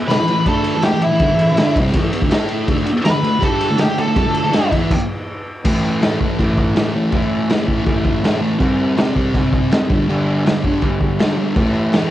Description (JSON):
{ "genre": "garage rock duo or trio", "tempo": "162 BPM", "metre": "4/4", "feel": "straight", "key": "unclear", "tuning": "A4 = 440 Hz", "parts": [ { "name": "octave-fuzz lead guitar", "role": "melody", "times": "0.1-4.7 s", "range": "E4 to B4", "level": "-19 LUFS", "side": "equal", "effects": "distortion" }, { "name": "thick fuzz guitar", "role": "riff", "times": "0.1-12.1 s", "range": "G2 to A4", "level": "-17 LUFS", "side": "equal", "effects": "distortion, cassette tape" }, { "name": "raw garage drum kit", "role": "drums", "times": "0.1-12.0 s", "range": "crash cymbal, kick drum, ride cymbal, snare drum", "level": "-18 LUFS", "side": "equal", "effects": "cassette tape" } ], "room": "light reverb, small room reverb", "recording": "home recording on cassette", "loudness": "-14 LUFS", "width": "side -13 dB against mid", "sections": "0.0-5.7 A section; 5.7-12.1 B section", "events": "lead electric guitar solo 0.0-5.7; stop 4.9-5.7", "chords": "0.0 A5; 2.7 D5; 5.7 A5; 8.6 C5; 9.9 G5; 11.6 A5" }